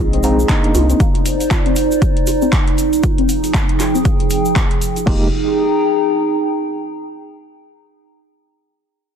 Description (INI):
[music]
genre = deep house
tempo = 118 BPM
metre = 4/4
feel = swing 58% on 16ths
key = F dorian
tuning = A4 = 440 Hz
[part]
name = warbly dusty pluck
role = arpeggios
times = 0.0-5.3 s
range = C4 to F5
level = -24 LUFS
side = left 5 dB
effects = lush chorus, sidechain pumping, analog delay
[part]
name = overdriven tine electric piano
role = stabs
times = 0.0-1.0, 5.1-5.3 s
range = Ab3 to G4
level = -21 LUFS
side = equal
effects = fast tremolo, sidechain pumping, analog delay
[part]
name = round analog bass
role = bass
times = 0.0-0.9, 5.1-5.3 s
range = F1 to C2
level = -17 LUFS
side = equal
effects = sidechain pumping
[part]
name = warbly tape-like pad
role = texture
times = 0.0-7.1 s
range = F3 to Bb5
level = -18 LUFS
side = right 1 dB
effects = chorus, built-in reverb, sidechain pumping
[part]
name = deep house drum kit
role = drums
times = 0.1-5.2 s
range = crash cymbal, handclaps, hi-hat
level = -25 LUFS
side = equal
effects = overdrive, vintage 12-bit sampler grit
[part]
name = egg shaker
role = percussion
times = 0.2-5.0 s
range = none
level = -29 LUFS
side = right 2 dB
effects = none
[part]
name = electronic kick drum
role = drums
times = 0.5-5.2 s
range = none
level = -16 LUFS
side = equal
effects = overdrive, vintage 12-bit sampler grit
[sound]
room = light reverb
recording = dense, heavily limited modern master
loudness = -13 LUFS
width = side -7 dB against mid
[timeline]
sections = 0.0-5.1 A section; 5.1-7.1 B section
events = filter sweep on synth pluck 0.0-5.1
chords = 0.0 Bb9sus4; 0.7 Cm9; 2.8 Fm11